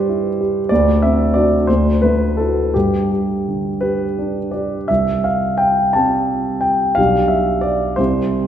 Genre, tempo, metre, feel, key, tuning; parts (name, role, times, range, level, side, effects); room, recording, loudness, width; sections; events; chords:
classical, romantic character piece for solo piano; 57 BPM (dotted quarters); 6/8; uneven beats, rubato; G major, C major from 4.9 s; A4 = 440 Hz
warm grand piano; solo; 0.0-8.5 s; B1 to A5; -14 LUFS; equal
wet recital hall reverb, RT60 1.6 s; recorded in a church or concert hall; -14 LUFS; side -10 dB against mid
0.0-4.9 A section; 4.9-8.5 B section
0.0 G6; 0.7 D7; 1.7 Dadd9; 2.7 G; 4.9 C5; 7.0 G/B